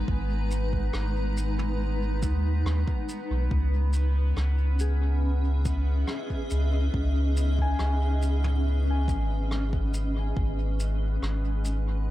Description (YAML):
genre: ambient dub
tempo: 70 BPM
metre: 4/4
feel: straight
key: C# dorian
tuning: A4 = 441 Hz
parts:
  - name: granular cloud pad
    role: sustained chords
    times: 0.0-12.1 s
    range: G#3 to A#5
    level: -33 LUFS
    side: equal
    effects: built-in reverb
  - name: Celtic harp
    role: arpeggios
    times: 0.0-10.4 s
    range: G#4 to G#5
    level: -41 LUFS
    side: left 3 dB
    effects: tape echo
  - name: warm sub bass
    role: bass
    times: 0.0-12.1 s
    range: G#1 to D#2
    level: -25 LUFS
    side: equal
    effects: tube saturation
  - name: bubbling stepped-filter texture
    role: texture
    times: 0.0-12.1 s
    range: B3 to B4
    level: -41 LUFS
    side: right 1 dB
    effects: chorus, built-in reverb
  - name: electronic kick drum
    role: drums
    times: 0.1-10.5 s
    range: none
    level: -30 LUFS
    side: equal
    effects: none
  - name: vintage brush drum kit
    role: drums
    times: 0.5-11.8 s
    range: rim click, shaker, toms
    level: -40 LUFS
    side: equal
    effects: dub echo
room: small room ambience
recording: none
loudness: -24 LUFS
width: side -15 dB against mid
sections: 0.0-12.1 A section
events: none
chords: 0.0 G#madd9; 3.5 C#m9; 10.4 G#madd9